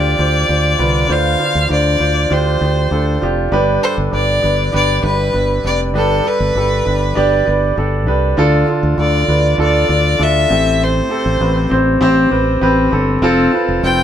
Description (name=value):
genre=piano-driven pop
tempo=99 BPM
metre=4/4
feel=straight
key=unclear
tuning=A4 = 439 Hz
part: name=rich fiddle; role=melody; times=0.0-14.0 s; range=A4 to G5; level=-17 LUFS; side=left 2 dB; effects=none
part: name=warm concert grand piano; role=accompaniment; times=0.0-14.0 s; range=G2 to D5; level=-16 LUFS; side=right 1 dB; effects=none
part: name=fingered electric bass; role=bass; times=0.0-14.0 s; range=F1 to D2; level=-17 LUFS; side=equal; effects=none
room=moderate studio reverb, RT60 0.6 s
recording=band playing live in one room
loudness=-12 LUFS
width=side -10 dB against mid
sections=0.0-8.4 A section; 8.4-14.0 B section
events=none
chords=0.0 Dm7; 8.4 Dm; 10.5 Am7; 13.2 F